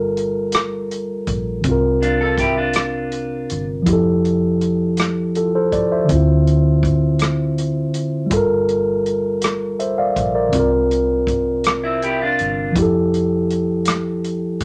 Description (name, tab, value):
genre	slow six-eight R&B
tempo	54 BPM (dotted quarters)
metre	6/8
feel	straight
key	G dorian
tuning	A4 = 442 Hz
part	mellow tine electric piano	accompaniment	0.0-14.6 s	C3 to F5	-20 LUFS	equal	none
part	vintage muted fingered electric bass	bass	0.0-14.6 s	F1 to D2	-28 LUFS	equal	none
part	warm soul drum kit	drums	0.2-14.6 s	hi-hat, kick drum, rim click	-25 LUFS	equal	none
part	electric guitar at the edge of break-up	second line	2.0-3.6, 11.8-12.7 s	C4 to A4	-23 LUFS	equal	none
room	wet studio reverb, RT60 0.6 s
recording	none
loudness	-18 LUFS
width	mono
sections	0.0-14.6 A section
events	none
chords	0.0 Gm9; 1.6 C7sus4; 3.9 Fmaj9; 6.1 Dm9; 8.3 Gm9; 10.5 C7sus4; 12.8 Fmaj9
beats	0.53 | 1.64 2.75 | 3.87 4.98 | 6.09 7.20 | 8.31 9.42 | 10.53 11.64 | 12.75 13.87